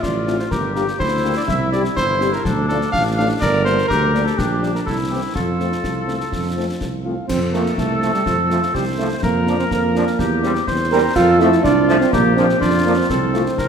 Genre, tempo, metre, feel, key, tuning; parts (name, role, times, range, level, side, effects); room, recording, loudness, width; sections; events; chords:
military-style march for wind band; 124 BPM; 2/4; straight; F major; A4 = 440 Hz
warm cornet; melody; 0.0-13.7 s; F4 to Bb5; -24 LUFS; equal
mellow woodwind section; second line; 0.0-13.7 s; D4 to C5; -22 LUFS; left 1 dB
warm tuba; bass; 0.0-13.7 s; G1 to F2; -21 LUFS; right 2 dB
concert snare drum, concert bass drum and clash cymbals; drums; 0.0-13.7 s; -27 LUFS; left 2 dB
mellow French horn section; accompaniment; 0.3-13.4 s; E3 to G4; -27 LUFS; left 5 dB
mellow euphonium; second line; 7.0-13.7 s; F3 to Bb4; -19 LUFS; right 3 dB
bright trombone section; sustained chords; 7.5-13.4 s; F3 to D4; -26 LUFS; right 1 dB
wet scoring stage reverb, RT60 1.9 s; -16 LUFS; side -7 dB against mid
0.0-7.3 A section; 7.3-13.7 A section
0.0 F/A; 0.5 Gm; 1.5 C; 2.4 Dm; 3.4 Gm; 4.4 Gm/Bb; 4.9 C7; 5.4 F; 9.2 Bb/F; 10.2 C7/E; 11.2 F; 12.1 Bb; 13.1 F/C